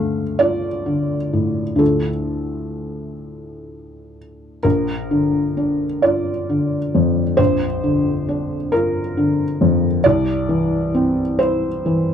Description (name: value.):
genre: neoclassical minimalist piano.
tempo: 42-46 BPM (dotted quarters).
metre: 6/8.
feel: rubato.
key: unclear.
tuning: A4 = 437 Hz.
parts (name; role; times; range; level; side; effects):
felt-muted upright piano; solo; 0.0-12.1 s; Bb1 to F5; -17 LUFS; equal; none.
room: light reverb.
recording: dark, warm production.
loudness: -16 LUFS.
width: side -8 dB against mid.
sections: 0.0-4.6 A section; 4.6-12.1 A section.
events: none.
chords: 0.0 Dm; 4.6 Bb; 10.0 C.